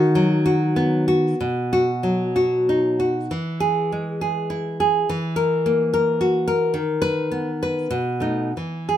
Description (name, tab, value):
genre	romantic piece for solo classical guitar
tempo	88-109 BPM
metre	3/4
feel	rubato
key	unclear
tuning	A4 = 440 Hz
part	nylon-string guitar	solo	0.0-9.0 s	B2 to B4	-19 LUFS	equal	none
room	moderate studio reverb, RT60 0.6 s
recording	none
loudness	-19 LUFS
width	side -11 dB against mid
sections	0.0-9.0 A section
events	none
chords	0.0 B/D#; 1.4 B; 3.3 E; 5.1 F#7/E; 6.8 B/D#; 7.9 B7